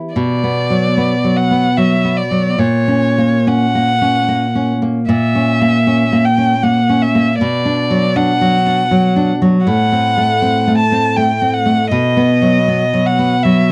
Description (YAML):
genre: romantic duo for violin and classical guitar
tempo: 64-81 BPM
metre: 3/4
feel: rubato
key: unclear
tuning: A4 = 440 Hz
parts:
  - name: nylon-string guitar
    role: accompaniment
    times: 0.0-13.7 s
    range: A2 to E4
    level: -16 LUFS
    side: equal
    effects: none
  - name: rich violin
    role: melody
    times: 0.2-13.7 s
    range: C#5 to A5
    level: -19 LUFS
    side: equal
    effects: none
room: little or no reverb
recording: dry, close 1970s-style studio recording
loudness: -14 LUFS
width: mono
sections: 0.2-13.7 A section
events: none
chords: 0.2 Bm; 2.6 F#/A#; 7.4 Bm; 9.7 F#dim/A; 11.9 B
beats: | 0.16 0.97 1.77 | 2.59 3.48 4.30 | 5.10 5.88 6.64 | 7.41 8.16 8.91 | 9.66 10.42 11.16 | 11.91 12.67 13.44